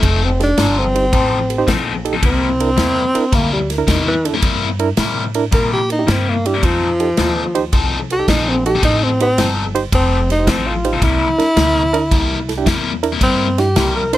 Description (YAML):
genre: electric blues shuffle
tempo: 109 BPM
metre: 4/4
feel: swing 68% on 8ths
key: C mixolydian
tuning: A4 = 435 Hz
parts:
  - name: breathy tenor saxophone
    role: melody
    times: 0.0-14.2 s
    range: Eb3 to C5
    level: -17 LUFS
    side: equal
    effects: none
  - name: overdriven electric guitar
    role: riff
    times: 0.0-14.0 s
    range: C3 to A4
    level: -20 LUFS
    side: left 5 dB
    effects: phaser
  - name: upright bass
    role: bass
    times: 0.0-14.2 s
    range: F1 to Bb2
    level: -20 LUFS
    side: equal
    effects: none
  - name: natural country drum kit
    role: drums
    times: 0.0-14.2 s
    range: kick drum, ride cymbal, snare drum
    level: -20 LUFS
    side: equal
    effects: none
  - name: reed electric piano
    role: accompaniment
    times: 0.4-14.2 s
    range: D4 to C5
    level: -19 LUFS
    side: right 6 dB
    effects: fast tremolo
room: little or no reverb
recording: none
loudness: -13 LUFS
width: side -14 dB against mid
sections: 0.0-14.2 A section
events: tenor saxophone solo 0.0-14.2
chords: 0.0 F7; 2.2 C7; 6.6 F7; 11.0 C7